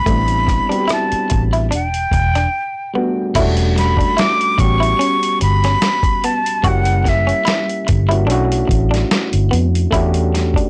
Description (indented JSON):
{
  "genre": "R&B, neo-soul",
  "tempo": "73 BPM",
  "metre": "4/4",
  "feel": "swing 54% on 16ths",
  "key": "E dorian from 3.4 s",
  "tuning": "A4 = 440 Hz",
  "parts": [
    { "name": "breathy reedy jazz flute", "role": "melody", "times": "0.0-7.9 s", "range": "E5 to D6", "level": "-21 LUFS", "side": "equal", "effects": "none" },
    { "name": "overdriven reed electric piano", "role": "accompaniment", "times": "0.0-10.7 s", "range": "F#3 to G4", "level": "-24 LUFS", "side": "equal", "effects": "none" },
    { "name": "semi-hollow electric guitar", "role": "second line", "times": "0.1-10.7 s", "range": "A3 to F#4", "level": "-24 LUFS", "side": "equal", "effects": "none" },
    { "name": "vintage muted fingered electric bass", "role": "bass", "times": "0.1-10.6 s", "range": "E1 to F2", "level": "-19 LUFS", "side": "equal", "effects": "tube saturation" },
    { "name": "dusty soul sampler-style drum kit", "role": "drums", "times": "0.1-10.7 s", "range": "crash cymbal, hi-hat, kick drum, rim click, snare drum", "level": "-22 LUFS", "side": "equal", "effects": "none" }
  ],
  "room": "light reverb",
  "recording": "blown-out, overdriven recording, overdrive",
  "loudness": "-16 LUFS",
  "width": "mono",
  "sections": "0.0-3.4 A section; 3.4-10.7 B section",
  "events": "break 2.5-3.4",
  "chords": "0.1 Am9; 1.7 Em7; 3.4 Em11; 4.6 A13; 6.6 F#7b9; 8.3 Bm7; 9.9 Em11",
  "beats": "| 0.06 0.88 1.71 2.53 | 3.35 4.17 4.99 5.82 | 6.64 7.46 8.28 9.10 | 9.93"
}